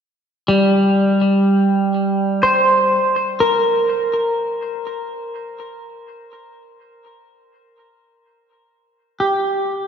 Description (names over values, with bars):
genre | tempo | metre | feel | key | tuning
ambient | 62 BPM | 4/4 | straight | unclear | A4 = 440 Hz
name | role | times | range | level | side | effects
clean electric guitar | solo | 0.5-9.9 s | G3 to C5 | -15 LUFS | equal | lush chorus, ping-pong delay
room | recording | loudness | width
wet lush hall reverb, RT60 2.8 s | dreamy mix soaked in reverb, cassette tape, nothing above 7.5 kHz | -15 LUFS | side -7 dB against mid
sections
0.0-7.8 A section; 7.8-9.9 B section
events
none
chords
0.0 Gmadd11; 7.8 N.C.